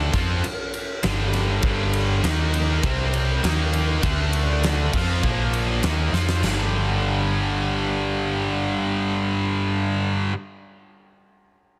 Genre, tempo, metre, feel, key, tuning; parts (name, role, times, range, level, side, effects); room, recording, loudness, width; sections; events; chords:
hard rock; 100 BPM; 4/4; straight; G minor; A4 = 440 Hz
distorted electric guitar; riff; 0.0-10.3 s; G2 to F4; -29 LUFS; equal; overdrive
scooped high-gain guitar; riff; 0.0-10.3 s; G2 to F4; -28 LUFS; equal; distortion
hollow-body short-scale fingered electric bass; bass; 0.0-10.3 s; G1 to F2; -27 LUFS; equal
huge arena drum kit; drums; 0.1-6.6 s; crash cymbal, kick drum, ride cymbal, snare drum, splash cymbal; -29 LUFS; equal
small room ambience; dense, heavily limited modern master; -23 LUFS; mono
0.0-6.4 A section; 6.4-8.8 B section
drum fill 6.1
0.1 G5; 2.2 Eb5; 2.8 C5; 3.4 Eb5; 4.0 D5; 4.9 F5; 5.2 Bb5; 5.8 Bbsus24/Eb; 6.4 G5